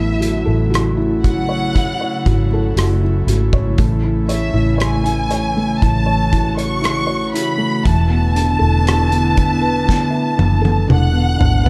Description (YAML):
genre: pop ballad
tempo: 59 BPM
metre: 4/4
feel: straight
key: A major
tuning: A4 = 440 Hz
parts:
  - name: rich studio violin section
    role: melody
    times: 0.0-11.7 s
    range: E5 to F#6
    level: -24 LUFS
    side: equal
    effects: none
  - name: felt-muted upright piano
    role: accompaniment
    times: 0.0-11.7 s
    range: E3 to E5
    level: -24 LUFS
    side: equal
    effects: none
  - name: airy breathy pad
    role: sustained chords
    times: 0.0-11.7 s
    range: C#3 to F#4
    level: -25 LUFS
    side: equal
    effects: chorus
  - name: vintage muted fingered electric bass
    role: bass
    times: 0.0-11.7 s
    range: E1 to A1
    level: -20 LUFS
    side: equal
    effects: none
  - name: loose indie drum kit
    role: drums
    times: 0.2-11.7 s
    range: hi-hat, kick drum, rim click, snare drum, toms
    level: -21 LUFS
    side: equal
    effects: none
room: light reverb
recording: dark, warm production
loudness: -16 LUFS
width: mono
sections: 0.0-11.7 A section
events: drum fill 9.9-11.7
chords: 0.0 F#m7/A; 3.8 Amaj7; 7.9 E7sus4